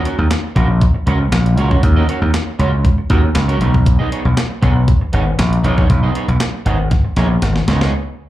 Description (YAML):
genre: early-eighties boogie funk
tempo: 118 BPM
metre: 4/4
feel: straight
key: unclear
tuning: A4 = 441 Hz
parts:
  - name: electric guitar at the edge of break-up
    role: riff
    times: 0.0-7.9 s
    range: B3 to Eb5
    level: -23 LUFS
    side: right 4 dB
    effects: lush chorus, slapback echo
  - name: crisp 8-bit digital drum machine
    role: drums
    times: 0.1-7.9 s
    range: handclaps, hi-hat, kick drum, snare drum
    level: -16 LUFS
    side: equal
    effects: none
  - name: gritty slap bass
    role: bass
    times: 0.2-7.9 s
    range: G#1 to Eb2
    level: -14 LUFS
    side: equal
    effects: overdrive
room: little or no reverb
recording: live gig heard through the venue's PA, club reverb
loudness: -12 LUFS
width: side -14 dB against mid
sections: 0.0-7.9 A section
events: drum fill 6.9-7.9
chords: 0.0 Ebm7; 3.6 B69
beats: 0.31 0.81 1.32 | 1.83 2.34 2.85 3.36 | 3.87 4.37 4.88 5.39 | 5.90 6.41 6.92 7.42